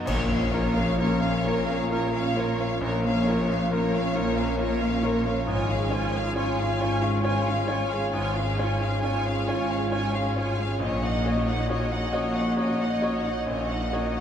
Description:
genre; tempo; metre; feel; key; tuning
cinematic, emotional film score for orchestra; 45 BPM (dotted quarters); 6/8; rubato; Bb minor; A4 = 436 Hz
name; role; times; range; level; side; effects
warm symphonic violin section; second line; 0.0-14.2 s; Ab4 to Eb5; -33 LUFS; left 2 dB; none
bright grand piano; accompaniment; 0.0-14.2 s; Bb1 to Db5; -30 LUFS; right 1 dB; none
warm symphonic violin section; melody; 0.1-14.2 s; Db5 to Ab5; -31 LUFS; equal; none
warm symphonic viola section; accompaniment; 0.1-14.2 s; Bb3 to F4; -35 LUFS; right 3 dB; none
concert harp; arpeggios; 0.1-14.2 s; Ab2 to Db6; -32 LUFS; left 3 dB; none
rich symphonic cello section; bass; 0.1-14.2 s; Ab2 to Bb2; -30 LUFS; equal; none
rich symphonic double bass section; bass; 0.1-14.2 s; Ab1 to Bb1; -31 LUFS; equal; none
clash cymbals and concert bass drum; percussion; 0.1-1.9 s; none; -34 LUFS; equal; none
room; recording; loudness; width
wet cathedral reverb, RT60 5.7 s; in a vast, echoing space; -23 LUFS; side -9 dB against mid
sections
0.0-14.2 A section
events
band accent 0.0-1.0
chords
0.0 Bbm; 5.5 Db/Ab; 10.8 Gb6/Bb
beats
| 0.05 1.44 | 2.81 4.15 | 5.47 6.80 | 8.13 9.47 | 10.79 12.12 | 13.48

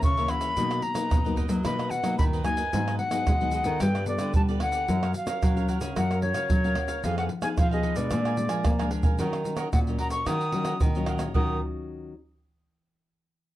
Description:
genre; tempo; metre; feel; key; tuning
samba and choro; 111 BPM; 4/4; straight; Eb minor; A4 = 441 Hz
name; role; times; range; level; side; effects
reedy silver concert flute; melody; 0.0-11.6 s; Db5 to Eb6; -30 LUFS; left 1 dB; plate reverb
cavaquinho; accompaniment; 0.0-11.6 s; D4 to Ab5; -37 LUFS; right 4 dB; none
nylon-string guitar; accompaniment; 0.0-12.1 s; F#2 to Bb4; -32 LUFS; left 4 dB; none
nylon-string guitar; bass; 0.0-11.6 s; F2 to B3; -29 LUFS; equal; none
tube shaker, surdo, pandeiro and tamborim; percussion; 0.0-11.5 s; none; -27 LUFS; right 1 dB; none
room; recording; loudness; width
light reverb; dark, warm production; -24 LUFS; side -14 dB against mid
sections
0.0-9.2 A section; 9.2-11.3 B section; 11.3-13.5 C section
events
drum fill 8.7-9.2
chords
0.0 Gb7; 0.6 Bmaj7; 2.7 Abm7; 3.8 G9; 4.9 Gbmaj7; 7.0 Fm7b5; 8.1 Bb7; 9.2 Ebm9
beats
0.04 | 0.57 1.11 1.65 2.19 | 2.73 3.27 3.81 4.34 | 4.88 5.42 5.96 6.50 | 7.04 7.58 8.12 8.65 | 9.19 9.73 10.27 10.81 | 11.35 11.89

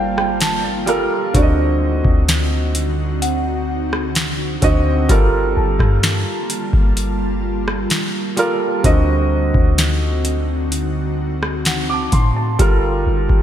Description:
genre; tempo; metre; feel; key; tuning
contemporary R&B; 64 BPM; 4/4; straight; G minor; A4 = 441 Hz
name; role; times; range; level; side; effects
warm grand piano; accompaniment; 0.0-13.4 s; D3 to D6; -20 LUFS; right 2 dB; wide subtle chorus
ethereal airy pad; sustained chords; 0.0-13.4 s; D3 to A5; -24 LUFS; equal; ensemble chorus, built-in reverb, sidechain pumping
clean 808-style bass; bass; 0.0-13.4 s; G1 to A2; -20 LUFS; equal; none
booming analog drum machine; drums; 0.2-13.4 s; hi-hat, kick drum, rim click, snare drum; -18 LUFS; equal; none
worn celesta; texture; 3.2-13.2 s; F#5 to C6; -29 LUFS; left 3 dB; lush chorus, ping-pong delay
room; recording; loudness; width
moderate lush hall reverb, RT60 2.6 s; bright 1980s-style digital production; -15 LUFS; side -10 dB against mid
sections
0.0-13.4 A section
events
grand piano fill 0.0-1.3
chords
0.0 Gm9; 1.3 D7b9; 5.1 Gm9; 8.8 D7b9; 12.6 Gm9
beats
0.41 | 1.34 2.28 3.22 4.16 | 5.09 6.03 6.97 7.91 | 8.84 9.78 10.72 11.66 | 12.59

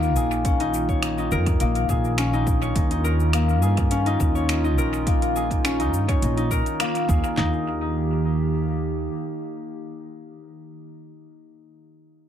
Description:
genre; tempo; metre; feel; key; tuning
organic downtempo; 104 BPM; 4/4; straight; Eb mixolydian; A4 = 442 Hz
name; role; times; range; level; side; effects
warbly tape-like pad; sustained chords; 0.0-10.4 s; Eb3 to G4; -29 LUFS; right 4 dB; chorus, built-in reverb, sidechain pumping
concert harp; arpeggios; 0.0-10.1 s; Bb3 to Db5; -26 LUFS; left 3 dB; dub echo
upright bass; bass; 0.0-9.1 s; Bb1 to G2; -24 LUFS; equal; sidechain pumping
deep house drum kit; drums; 0.0-7.3 s; cabasa, finger snaps, hi-hat; -31 LUFS; equal; overdrive, dub echo
deep house drum kit; drums; 0.4-7.5 s; handclaps, kick drum, snare drum, toms; -24 LUFS; equal; overdrive
room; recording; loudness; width
moderate spring reverb, RT60 1.2 s; echo-heavy mix; -20 LUFS; side -10 dB against mid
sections
0.0-7.4 A section; 7.4-9.7 B section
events
band accent 6.8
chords
0.0 Ebsus2; 2.8 Dbadd9; 7.4 Eb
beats
| 0.45 1.03 1.60 2.18 | 2.76 3.33 3.91 4.49 | 5.07 5.64 6.22 6.80 | 7.37 7.95 8.53 9.10

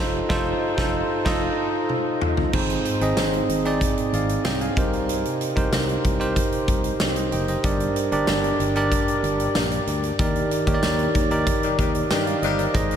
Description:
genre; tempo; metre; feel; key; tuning
1980s-style pop; 94 BPM; 4/4; straight; unclear; A4 = 440 Hz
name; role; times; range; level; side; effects
bell-like tine electric piano; accompaniment; 0.0-13.0 s; G2 to Ab5; -22 LUFS; right 1 dB; shimmer reverb
fretless electric bass; bass; 0.0-13.0 s; F1 to G2; -28 LUFS; left 1 dB; wide subtle chorus
huge arena drum kit; drums; 0.3-13.0 s; crash cymbal, hi-hat, kick drum, snare drum, tambourine, toms; -25 LUFS; equal; none
tambourine; percussion; 3.2-12.3 s; none; -43 LUFS; left 10 dB; none
warm horn section; stabs; 11.6-12.6 s; Eb3 to G4; -28 LUFS; left 8 dB; ping-pong delay, shimmer reverb
room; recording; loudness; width
moderate huge ambient reverb, RT60 8.3 s; dreamy mix soaked in reverb; -20 LUFS; side -8 dB against mid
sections
0.0-2.5 A section; 2.5-13.0 B section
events
band accent 0.0-2.5, 10.2-12.7; drum fill 1.9-2.5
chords
0.0 F7; 2.5 Ab; 4.8 Cm7; 7.6 Gm; 10.2 Ebmaj7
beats
0.62 1.26 1.90 | 2.53 3.17 3.81 4.45 | 5.09 5.72 6.36 7.00 | 7.64 8.28 8.92 9.55 | 10.19 10.83 11.47 12.11 | 12.75

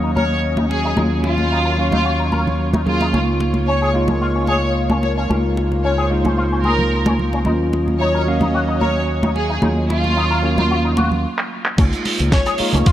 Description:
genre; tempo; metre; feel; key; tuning
nu-disco, nu disco; 111 BPM; 4/4; straight; Db major; A4 = 440 Hz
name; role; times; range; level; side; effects
tine electric piano; accompaniment; 0.0-12.9 s; Gb3 to F5; -22 LUFS; equal; lush chorus, sidechain pumping, tape echo
lush unison pad; sustained chords; 0.0-12.9 s; Gb3 to Eb5; -28 LUFS; equal; chorus, phaser, sidechain pumping
electric guitar with an envelope filter; riff; 0.0-12.9 s; Db4 to Bb4; -26 LUFS; left 3 dB; ensemble chorus, low-pass filter
fingered electric bass with an envelope filter; bass; 0.0-12.9 s; Db2 to Eb2; -21 LUFS; equal; none
rich studio violin section; melody; 0.2-12.5 s; F4 to Db5; -22 LUFS; equal; tape echo
congas; percussion; 0.2-12.8 s; none; -23 LUFS; equal; none
damped 70s drum kit; drums; 11.4-12.9 s; crash cymbal, handclaps, hi-hat, rim click, snare drum; -22 LUFS; right 2 dB; low-pass filter on hats, low-pass filter on cymbals, low-pass filter on snare, low-pass filter on room
electronic kick drum; drums; 11.8-12.9 s; none; -14 LUFS; equal; overdrive
room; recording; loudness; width
moderate lush hall reverb, RT60 2.9 s; dark, warm production; -15 LUFS; side -12 dB against mid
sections
0.0-11.8 A section; 11.8-12.9 B section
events
stop 11.2-11.8; drum fill 11.4-11.8; drop 11.8-12.9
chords
0.0 Ebm7; 3.1 Db6; 7.5 Ebm7; 11.8 Db6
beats
0.43 | 0.97 1.51 2.05 2.59 | 3.13 3.67 4.22 4.76 | 5.30 5.84 6.38 6.92 | 7.46 8.00 8.54 9.08 | 9.62 10.16 10.70 11.24 | 11.78 12.32 12.87

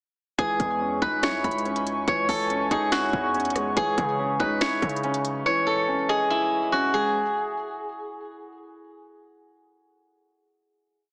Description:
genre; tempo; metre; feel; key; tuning
hip hop, trap; 142 BPM; 4/4; half-time; C# minor; A4 = 442 Hz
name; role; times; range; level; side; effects
steel-string zither; melody; 0.4-9.2 s; E4 to C#5; -28 LUFS; equal; low-pass filter, tape echo
soft synth bell; second line; 0.4-3.3 s; G#5 to C#6; -38 LUFS; equal; chorus, phaser, tape echo
dark concert grand piano; accompaniment; 0.4-7.2 s; E3 to D#5; -32 LUFS; equal; low-pass filter
dark analog pad; sustained chords; 0.4-7.1 s; C#5 to C#6; -36 LUFS; equal; chorus
distorted 808-style bass; bass; 0.4-5.4 s; B1 to C#3; -36 LUFS; equal; distortion
trap drum kit; drums; 0.4-5.3 s; finger snaps, hi-hat, kick drum, rim click, snare drum; -31 LUFS; equal; none
room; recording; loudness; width
light reverb, digital ambience; heavily compressed radio sound, multiband compression, small speaker sound; -25 LUFS; mono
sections
0.4-7.1 hook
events
none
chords
0.4 C#madd9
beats
| 0.39 0.81 1.23 1.65 | 2.08 2.50 2.92 3.34 | 3.77 4.19 4.61 5.03 | 5.46 5.88 6.30 6.72

